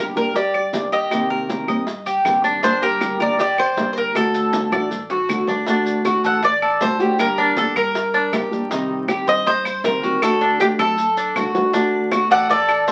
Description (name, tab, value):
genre	latin, Cuban son and guajira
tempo	158 BPM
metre	4/4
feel	straight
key	unclear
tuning	A4 = 440 Hz
part	Cuban tres	melody	0.0-12.9 s	G4 to F#5	-22 LUFS	equal	none
part	nylon-string guitar	accompaniment	0.0-12.9 s	C3 to G4	-25 LUFS	equal	none
part	Cuban tres	arpeggios	0.0-12.9 s	D4 to Eb5	-24 LUFS	equal	none
part	upright bass	bass	0.0-12.9 s	G1 to G2	-42 LUFS	equal	none
part	congas	percussion	0.2-12.9 s	none	-34 LUFS	equal	none
part	maracas	percussion	0.2-12.9 s	none	-39 LUFS	equal	none
part	bongos	percussion	0.4-12.9 s	none	-32 LUFS	equal	none
part	claves	percussion	0.5-12.9 s	none	-29 LUFS	equal	none
part	brilliant trumpet	second line	12.3-12.9 s	A4 to D5	-24 LUFS	equal	none
room	wet studio reverb, RT60 0.5 s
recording	very old 78 rpm record, vinyl crackle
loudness	-19 LUFS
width	mono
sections	0.0-5.7 A section; 5.7-12.9 B section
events	drum fill 4.2-5.7, 10.6-11.7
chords	0.0 Gm; 1.1 Cm7; 2.6 Gm; 4.2 D; 7.2 Gm; 8.7 Cm; 10.2 D